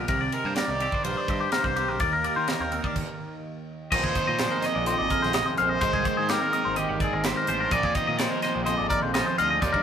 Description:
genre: math rock and midwest emo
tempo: 126 BPM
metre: 4/4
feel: straight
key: unclear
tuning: A4 = 441 Hz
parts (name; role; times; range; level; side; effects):
- twangy electric guitar; accompaniment; 0.0-9.8 s; Eb2 to G4; -32 LUFS; right 4 dB; phaser
- twangy electric guitar; arpeggios; 0.0-9.8 s; G4 to F5; -27 LUFS; left 4 dB; phaser
- growling picked electric bass; bass; 0.0-9.8 s; G1 to Eb3; -34 LUFS; equal; overdrive
- crisp fusion drum kit; drums; 0.1-9.8 s; crash cymbal, hi-hat, kick drum, ride cymbal, snare drum; -30 LUFS; right 1 dB; none
- bright trumpet; melody; 0.3-9.8 s; G4 to Eb5; -29 LUFS; right 2 dB; none
- overdriven electric guitar; riff; 3.9-9.8 s; Eb2 to Eb4; -33 LUFS; equal; none
room: moderate stone room reverb, RT60 1.4 s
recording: rough rehearsal-room recording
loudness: -23 LUFS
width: side -8 dB against mid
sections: 0.0-3.9 A section; 3.9-9.8 B section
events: stop 3.0-3.9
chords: 0.1 Cm9; 2.0 Eb5; 3.9 Bb9sus4; 5.8 Abmaj9#11; 7.7 Bb9sus4

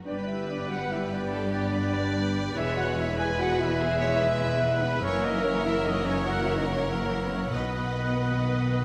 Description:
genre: cinematic, heroic adventure film score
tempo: 96 BPM (dotted quarters)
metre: 12/8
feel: straight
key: unclear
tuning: A4 = 440 Hz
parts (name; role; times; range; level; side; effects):
- mellow French horn section; sustained chords; 0.0-8.8 s; A#3 to G#4; -34 LUFS; equal; none
- warm symphonic violin section; melody; 0.1-8.8 s; G4 to D5; -38 LUFS; equal; none
- clear oboe; second line; 0.1-8.8 s; D#5 to G#5; -42 LUFS; equal; none
- large flute ensemble; second line; 0.1-8.8 s; A#4 to G#5; -40 LUFS; equal; none
- rich symphonic violin section; second line; 0.1-8.8 s; D5 to B5; -43 LUFS; equal; none
- warm clarinet; second line; 0.1-8.8 s; A#4 to B4; -41 LUFS; equal; none
- rich symphonic viola section; accompaniment; 0.1-8.8 s; G4 to D#5; -39 LUFS; equal; none
- bright trombone section; sustained chords; 0.1-8.8 s; D#3 to B3; -37 LUFS; equal; none
- mellow trumpet section; stabs; 0.1-8.8 s; A#4 to G#5; -37 LUFS; equal; none
- rich symphonic cello section; bass; 0.1-8.8 s; E2 to B2; -36 LUFS; equal; none
- rich symphonic double bass section; bass; 0.1-8.8 s; E1 to B1; -34 LUFS; equal; none
room: wet scoring stage reverb, RT60 1.9 s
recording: none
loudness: -27 LUFS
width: mono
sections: 0.0-8.8 A section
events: none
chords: 0.1 G; 2.6 E; 5.0 F#7; 7.5 B

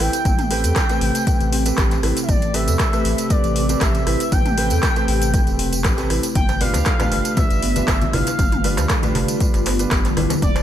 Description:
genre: afro house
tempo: 118 BPM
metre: 4/4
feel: straight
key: unclear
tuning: A4 = 440 Hz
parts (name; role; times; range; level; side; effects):
- expressive portamento lead; melody; 0.0-10.6 s; D5 to G5; -26 LUFS; equal; lush chorus, ping-pong delay
- ethereal airy pad; sustained chords; 0.0-10.6 s; C3 to B4; -28 LUFS; equal; ensemble chorus, built-in reverb, phaser, sidechain pumping
- marimba with medium mallets; arpeggios; 0.0-10.6 s; A3 to A4; -26 LUFS; left 1 dB; sidechain pumping, ping-pong delay
- felt-muted upright piano; stabs; 0.0-10.3 s; C4 to B4; -27 LUFS; right 4 dB; sidechain pumping, ping-pong delay
- round analog bass; bass; 0.0-10.6 s; E1 to E2; -22 LUFS; equal; sidechain pumping
- deep house drum kit; drums; 0.0-10.6 s; handclaps, hi-hat, rim click, toms; -25 LUFS; left 1 dB; overdrive, small room ambience
- tambourine; percussion; 0.1-10.6 s; none; -31 LUFS; right 3 dB; none
- electronic kick drum; drums; 0.3-10.5 s; none; -21 LUFS; equal; overdrive, small room ambience
- congas; percussion; 6.4-10.5 s; none; -28 LUFS; left 4 dB; none
- darbuka; percussion; 6.5-10.6 s; none; -29 LUFS; right 3 dB; none
room: small room ambience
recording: none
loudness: -16 LUFS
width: side -11 dB against mid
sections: 0.0-10.6 A section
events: none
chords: 0.0 Am9; 6.4 G7

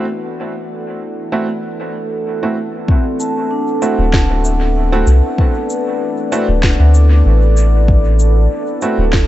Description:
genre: ambient dub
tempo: 96 BPM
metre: 4/4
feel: swing 53% on 16ths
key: D mixolydian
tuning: A4 = 440 Hz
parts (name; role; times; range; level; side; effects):
- deep dark ambient pad; sustained chords; 0.0-9.3 s; E4 to F#5; -21 LUFS; right 1 dB; chorus, built-in reverb
- vibraphone with medium mallets; arpeggios; 0.0-9.3 s; C4 to A5; -23 LUFS; left 3 dB; tape echo
- clear upright piano; stabs; 0.0-9.0 s; A3 to F#4; -22 LUFS; right 2 dB; dub echo
- bubbling stepped-filter texture; texture; 0.2-2.9 s; none; barely audible; none; none
- electronic kick drum; drums; 2.9-9.3 s; none; -14 LUFS; equal; none
- electronic shaker and snare drum; drums; 3.2-9.3 s; none; -23 LUFS; equal; dub echo
- soft dub sub bass; bass; 4.0-9.3 s; D1 to D2; -11 LUFS; equal; none
room: little or no reverb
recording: nothing above 8.0 kHz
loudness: -12 LUFS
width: side -14 dB against mid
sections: 0.0-2.9 A section; 2.9-9.3 B section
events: none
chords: 0.0 D; 2.9 D7

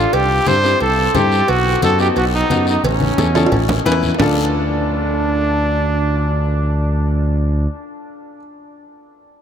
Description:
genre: latin, cumbia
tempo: 177 BPM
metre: 4/4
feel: straight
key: D dorian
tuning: A4 = 440 Hz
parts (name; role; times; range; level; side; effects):
- clear trumpet; melody; 0.0-7.7 s; C#4 to C5; -19 LUFS; right 1 dB; none
- bright upright piano; accompaniment; 0.0-8.4 s; B3 to B4; -22 LUFS; left 3 dB; none
- smooth gliding synth bass; bass; 0.0-7.7 s; A1 to G2; -18 LUFS; equal; none
- congas; percussion; 0.1-4.3 s; none; -25 LUFS; left 2 dB; none
- cowbell and timbales; percussion; 0.1-4.3 s; none; -25 LUFS; right 5 dB; none
- guiro; percussion; 0.1-4.3 s; none; -31 LUFS; left 8 dB; none
room: wet cathedral reverb, RT60 6.8 s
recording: in a vast, echoing space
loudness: -14 LUFS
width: side -8 dB against mid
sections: 0.0-4.2 A section; 4.2-6.9 B section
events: drum fill 2.8-4.2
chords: 0.1 C; 1.5 B; 2.8 A; 4.2 Dm

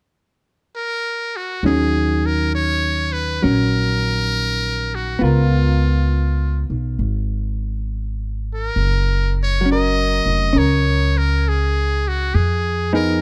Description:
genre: jazz ballad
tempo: 67 BPM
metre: 4/4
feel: swing 67% on 8ths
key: Eb minor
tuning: A4 = 442 Hz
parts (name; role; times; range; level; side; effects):
- trumpet with metal mute; melody; 0.8-13.2 s; F4 to Eb5; -24 LUFS; equal; none
- vintage hollow-body jazz guitar; accompaniment; 1.6-13.2 s; Eb3 to Bb4; -23 LUFS; equal; none
- upright bass; bass; 1.6-13.2 s; F1 to F2; -22 LUFS; equal; none
room: little or no reverb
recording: dark, warm production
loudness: -19 LUFS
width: mono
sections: 0.0-1.6 A section; 1.6-13.2 B section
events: none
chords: 0.0 N.C.; 1.6 Ebm7; 5.2 Db6; 8.8 Gb; 12.3 Fm7b5

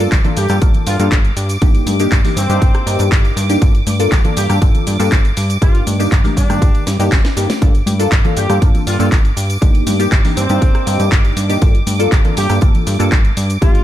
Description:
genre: filtered disco house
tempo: 120 BPM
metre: 4/4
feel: straight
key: G minor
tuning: A4 = 440 Hz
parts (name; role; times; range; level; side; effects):
- funky polysynth comp; accompaniment; 0.0-13.8 s; Eb3 to A4; -20 LUFS; left 1 dB; chorus, phaser, sidechain pumping
- dark studio violin section; sustained chords; 0.0-13.8 s; D6; -27 LUFS; right 2 dB; sidechain pumping
- plucky analog bass; bass; 0.0-13.8 s; G1 to G2; -17 LUFS; equal; tube saturation, sidechain pumping
- house drum kit; drums; 0.0-13.8 s; handclaps, hi-hat, rim click, shaker, snare drum; -22 LUFS; equal; sidechain pumping on hats, sidechain pumping on perc
- electronic kick drum; drums; 0.1-13.7 s; none; -12 LUFS; equal; none
- tambourine and congas; percussion; 0.1-13.8 s; none; -26 LUFS; left 2 dB; sidechain pumping on perc
- dark horn section; melody; 0.4-13.8 s; C4 to G4; -24 LUFS; equal; sidechain pumping
room: little or no reverb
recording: dark, warm production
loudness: -11 LUFS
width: side -12 dB against mid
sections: 0.0-13.8 A section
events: drum fill 6.9-7.6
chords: 0.0 Gm7; 1.4 Cm7/G; 3.6 Gm7; 5.4 Ebmaj7/G; 7.6 Gm7; 9.4 Cm7/G; 11.6 Gm7

